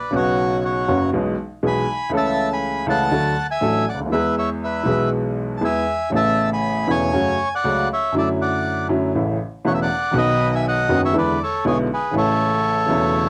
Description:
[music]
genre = tango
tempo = 120 BPM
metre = 4/4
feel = rubato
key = A major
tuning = A4 = 439 Hz
[part]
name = bandoneon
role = melody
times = 0.0-13.3 s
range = F#4 to B5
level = -23 LUFS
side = equal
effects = cassette tape
[part]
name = warm grand piano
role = accompaniment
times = 0.1-13.3 s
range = E1 to A4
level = -22 LUFS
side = equal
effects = cassette tape
[sound]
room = moderate studio ambience, RT60 0.5 s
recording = home recording on cassette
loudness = -20 LUFS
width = mono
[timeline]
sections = 0.0-13.3 A section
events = none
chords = 0.1 Bsus2; 1.1 E/B; 2.1 A/C#; 3.1 D; 4.1 E; 6.1 Aadd9; 7.1 F#m; 8.1 Dadd9/F#; 9.1 A; 10.1 B; 11.1 E7; 12.1 A

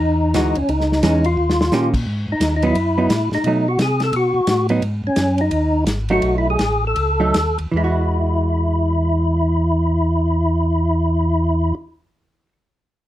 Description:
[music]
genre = soul jazz organ trio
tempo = 148-175 BPM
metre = 4/4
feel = swing 62% on 8ths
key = E major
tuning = A4 = 440 Hz
[part]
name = percussive tonewheel organ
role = melody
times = 0.0-11.7 s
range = C#4 to A4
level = -19 LUFS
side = equal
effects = slow rotary speaker, overdrive, chorus vibrato
[part]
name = mellow tonewheel organ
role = bass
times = 0.0-11.7 s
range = G#1 to C3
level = -20 LUFS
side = equal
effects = slow rotary speaker
[part]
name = hollow-body jazz guitar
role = accompaniment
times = 0.3-12.5 s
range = D#3 to G4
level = -22 LUFS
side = right 3 dB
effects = none
[part]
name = warm soul drum kit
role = drums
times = 0.3-7.7 s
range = crash cymbal, hi-hat, kick drum, ride cymbal, snare drum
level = -24 LUFS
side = equal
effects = none
[sound]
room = light reverb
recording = none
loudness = -16 LUFS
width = side -13 dB against mid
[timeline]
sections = 0.0-2.1 A section; 2.1-7.7 B section; 7.7-11.0 C section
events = drum fill 1.4-1.7; slowing down 4.8-7.7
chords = 0.0 Emaj9; 0.7 C#madd9; 1.4 D#7; 2.1 G#m7; 3.4 B7; 4.8 G#5; 6.2 B7; 7.7 Eadd9

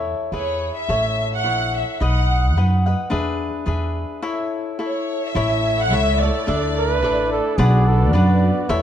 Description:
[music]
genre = mexican folk, mariachi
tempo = 107 BPM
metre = 2/4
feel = swing 55% on 8ths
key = A major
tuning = A4 = 440 Hz
[part]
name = cavaquinho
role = accompaniment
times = 0.0-8.8 s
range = D4 to F#5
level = -24 LUFS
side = left 3 dB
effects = none
[part]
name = upright bass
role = bass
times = 0.0-8.8 s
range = A1 to F#2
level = -19 LUFS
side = right 1 dB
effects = none
[part]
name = warm symphonic violin section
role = melody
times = 0.3-2.5, 4.8-7.3 s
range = C#5 to F#5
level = -23 LUFS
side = equal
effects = none
[part]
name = muted studio violin section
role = sustained chords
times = 5.4-8.8 s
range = A3 to D5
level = -28 LUFS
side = right 1 dB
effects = none
[part]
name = mellow trumpet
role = second line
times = 6.8-8.8 s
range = G#4 to B4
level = -23 LUFS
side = right 4 dB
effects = none
[sound]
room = light reverb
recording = dark, warm production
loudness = -17 LUFS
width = side -10 dB against mid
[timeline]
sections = 0.0-5.4 A section; 5.4-8.8 A section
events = none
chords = 0.3 E; 0.9 A; 2.0 B; 3.1 E7; 4.2 A; 6.5 Dsus2; 7.6 Bm

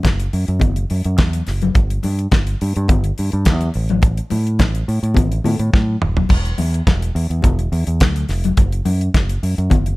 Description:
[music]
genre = disco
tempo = 106 BPM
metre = 4/4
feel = straight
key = E minor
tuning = A4 = 440 Hz
[part]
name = damped 70s drum kit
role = drums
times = 0.0-10.0 s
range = hi-hat, kick drum, snare drum, splash cymbal, toms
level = -17 LUFS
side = equal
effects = none
[part]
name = congas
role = percussion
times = 0.0-9.8 s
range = none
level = -23 LUFS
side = left 5 dB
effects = none
[part]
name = fingered electric bass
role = bass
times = 0.1-9.9 s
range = D#1 to A2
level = -18 LUFS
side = equal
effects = none
[sound]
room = little or no reverb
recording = none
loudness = -15 LUFS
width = side -20 dB against mid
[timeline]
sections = 0.0-10.0 A section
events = drum fill 5.7-6.3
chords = none

